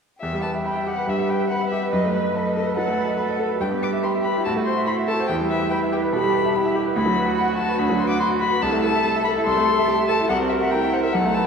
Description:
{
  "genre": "quick classical-period movement for piano quartet",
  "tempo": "143 BPM",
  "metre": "4/4",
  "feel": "rubato",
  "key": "E minor",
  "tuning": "A4 = 439 Hz",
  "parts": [
    { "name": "muted violin", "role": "melody", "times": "0.2-11.5 s", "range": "B4 to D6", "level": "-25 LUFS", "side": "left 4 dB", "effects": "none" },
    { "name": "muted violin", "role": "second line", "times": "0.2-11.5 s", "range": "E4 to B4", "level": "-28 LUFS", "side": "left 2 dB", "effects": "none" },
    { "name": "bright grand piano", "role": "accompaniment", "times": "0.2-11.5 s", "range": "B1 to C6", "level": "-22 LUFS", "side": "right 1 dB", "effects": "none" },
    { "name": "muted cello", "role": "second line", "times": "1.1-11.5 s", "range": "D4 to B4", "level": "-26 LUFS", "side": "right 4 dB", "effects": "none" }
  ],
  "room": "wet church reverb, RT60 2.6 s",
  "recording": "recorded in a church or concert hall",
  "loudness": "-19 LUFS",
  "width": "side -6 dB against mid",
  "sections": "0.2-11.5 A section",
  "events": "none",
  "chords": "0.2 Em; 1.1 Em/G; 1.9 B7/F#; 3.6 Em/G; 4.4 Am; 5.3 Em; 7.0 Bm/D; 8.6 Am/C; 10.3 C7"
}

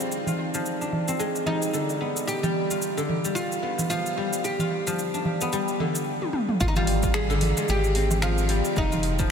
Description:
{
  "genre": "organic downtempo",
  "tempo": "111 BPM",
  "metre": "4/4",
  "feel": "swing 58% on 16ths",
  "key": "G phrygian dominant",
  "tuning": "A4 = 441 Hz",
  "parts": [
    { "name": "oud", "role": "melody", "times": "0.0-9.3 s", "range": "C4 to Ab4", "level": "-29 LUFS", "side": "equal", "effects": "analog delay" },
    { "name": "guzheng", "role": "arpeggios", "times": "0.0-9.3 s", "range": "D3 to F4", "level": "-27 LUFS", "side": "left 1 dB", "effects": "low-pass filter, analog delay" },
    { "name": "deep house drum kit", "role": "drums", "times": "0.0-9.3 s", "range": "finger snaps, hi-hat, shaker, toms", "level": "-32 LUFS", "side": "equal", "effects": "overdrive, studio reverb" },
    { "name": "quartz singing bowl", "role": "texture", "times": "0.0-6.1 s", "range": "Eb4 to D5", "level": "-42 LUFS", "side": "right 1 dB", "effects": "none" },
    { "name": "darbuka", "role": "percussion", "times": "0.3-9.2 s", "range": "none", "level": "-32 LUFS", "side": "right 2 dB", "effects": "none" },
    { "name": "round analog bass", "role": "bass", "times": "6.6-9.3 s", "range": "F1 to Ab1", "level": "-25 LUFS", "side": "equal", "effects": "sidechain pumping" },
    { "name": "electronic kick drum", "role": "drums", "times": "6.6-9.3 s", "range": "none", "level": "-28 LUFS", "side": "equal", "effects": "overdrive, studio reverb" }
  ],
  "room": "moderate huge ambient reverb, RT60 7.8 s",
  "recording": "dreamy mix soaked in reverb",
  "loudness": "-23 LUFS",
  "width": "side -7 dB against mid",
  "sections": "0.0-6.6 A section; 6.6-9.3 B section",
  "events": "drum fill 6.2-6.6",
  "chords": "0.1 Fm9; 2.3 G7; 6.6 Ab6; 8.8 F7(no3)"
}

